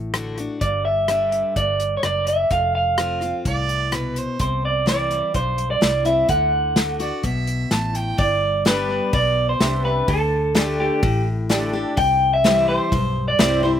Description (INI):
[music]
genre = honky-tonk and classic country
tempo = 127 BPM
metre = 4/4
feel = straight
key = G major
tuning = A4 = 441 Hz
[part]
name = picked steel-string acoustic guitar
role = accompaniment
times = 0.0-13.8 s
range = F2 to G4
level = -27 LUFS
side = left 4 dB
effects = none
[part]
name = vintage muted fingered electric bass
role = bass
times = 0.0-13.8 s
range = F1 to D2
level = -25 LUFS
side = equal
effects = none
[part]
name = unplugged drum kit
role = drums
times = 0.1-13.5 s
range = hi-hat, kick drum, rim click, snare drum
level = -22 LUFS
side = left 1 dB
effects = none
[part]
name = electric guitar through a small old amp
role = melody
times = 0.6-13.7 s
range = G4 to G5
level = -20 LUFS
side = right 1 dB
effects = slapback echo
[part]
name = clear fiddle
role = second line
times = 3.5-8.2 s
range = B4 to A5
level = -27 LUFS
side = right 4 dB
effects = none
[part]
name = honky-tonk upright piano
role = accompaniment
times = 8.7-13.8 s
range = D4 to E5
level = -28 LUFS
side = right 5 dB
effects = slapback echo
[sound]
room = little or no reverb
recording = recorded outdoors, with no room sound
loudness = -18 LUFS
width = side -9 dB against mid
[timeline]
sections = 0.0-8.2 A section; 8.2-13.8 B section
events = none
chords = 0.0 D; 0.6 G5; 2.5 F; 4.4 C; 6.3 D; 8.2 G; 10.1 Dsus4; 12.0 C